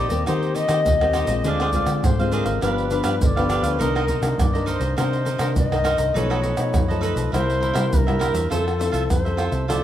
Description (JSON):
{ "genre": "samba and choro", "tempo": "102 BPM", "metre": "4/4", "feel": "straight", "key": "unclear", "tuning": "A4 = 438 Hz", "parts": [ { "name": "bright reedy bansuri", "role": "second line", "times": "0.0-9.8 s", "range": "A4 to Eb5", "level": "-25 LUFS", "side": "left 2 dB", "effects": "none" }, { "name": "cavaquinho", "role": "accompaniment", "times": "0.0-9.8 s", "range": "D4 to F5", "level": "-28 LUFS", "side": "right 4 dB", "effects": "none" }, { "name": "nylon-string guitar", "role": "accompaniment", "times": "0.0-9.8 s", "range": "F#2 to A4", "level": "-26 LUFS", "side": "left 4 dB", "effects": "none" }, { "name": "vintage muted fingered electric bass", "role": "bass", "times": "0.0-9.8 s", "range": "G1 to Eb3", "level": "-25 LUFS", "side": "equal", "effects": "none" }, { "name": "tube shaker, pandeiro, surdo and tamborim", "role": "percussion", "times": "0.1-9.8 s", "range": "none", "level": "-25 LUFS", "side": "right 1 dB", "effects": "none" } ], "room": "moderate large studio reverb, RT60 1.2 s", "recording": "none", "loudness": "-18 LUFS", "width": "side -11 dB against mid", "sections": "0.0-8.5 A section; 8.5-9.8 B section", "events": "none", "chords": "0.0 Eb6; 1.4 Dm7b5; 2.6 G7; 3.8 Cm9; 6.2 B7#11; 7.3 C7; 8.5 Fmaj7" }